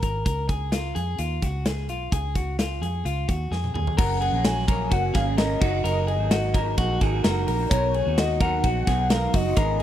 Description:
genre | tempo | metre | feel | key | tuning
jangly indie pop | 129 BPM | 4/4 | straight | F# major | A4 = 440 Hz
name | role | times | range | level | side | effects
electric guitar through a small old amp | arpeggios | 0.0-9.8 s | E#4 to A#4 | -29 LUFS | left 3 dB | none
vintage muted fingered electric bass | bass | 0.0-9.8 s | F#1 to E#2 | -26 LUFS | equal | none
big rock drum kit | drums | 0.0-9.8 s | crash cymbal, hi-hat, kick drum, ride cymbal, snare drum, toms | -26 LUFS | equal | none
warbly nostalgic lead | melody | 4.0-9.8 s | C#5 to G#5 | -28 LUFS | left 3 dB | chorus
electric guitar through a small old amp | accompaniment | 4.0-9.8 s | F#2 to G#4 | -29 LUFS | right 7 dB | phaser
room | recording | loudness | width
little or no reverb | dry, close 1970s-style studio recording | -21 LUFS | side -11 dB against mid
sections
0.0-4.0 A section; 4.0-9.8 B section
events
drum fill 3.5-4.0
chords
0.3 C#; 4.0 F#; 5.6 D#m/F#; 7.7 B

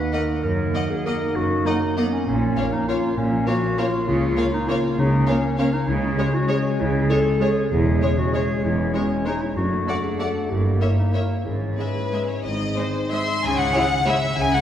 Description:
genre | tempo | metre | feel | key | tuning
classical, orchestral ballroom waltz | 171-215 BPM | 3/4 | rubato | C# minor from 5.9 s | A4 = 436 Hz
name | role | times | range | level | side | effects
warm clarinet | second line | 0.0-13.2 s | Cb4 to Cb5 | -26 LUFS | left 1 dB | none
mellow French horn section | sustained chords | 0.0-13.3 s | G#3 to E4 | -27 LUFS | left 1 dB | none
concert harp | arpeggios | 0.0-14.6 s | E2 to Eb5 | -28 LUFS | left 2 dB | none
rich chamber violin section | melody | 0.1-14.6 s | C#5 to B#5 | -28 LUFS | left 3 dB | none
bright chamber violin section | second line | 0.1-14.1 s | G#4 to E5 | -31 LUFS | left 2 dB | none
rich chamber viola section | accompaniment | 0.1-14.1 s | G#3 to E4 | -30 LUFS | right 2 dB | none
clear chamber cello section | bass | 0.4-14.6 s | E2 to Db3 | -27 LUFS | right 2 dB | none
rich chamber double bass section | bass | 0.4-14.6 s | E1 to Db2 | -28 LUFS | right 2 dB | none
room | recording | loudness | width
wet concert hall reverb, RT60 1.8 s | recorded in a church or concert hall | -19 LUFS | side -10 dB against mid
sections
0.0-13.4 A section; 13.4-14.6 B section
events
none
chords
0.4 Ebm/Gb; 2.3 Bbm; 4.1 Bbm/Db; 5.9 C#m; 7.7 C#m/E; 9.6 D/F#; 10.5 Gm6; 11.5 C#m/G#; 12.4 G#; 13.4 C#m

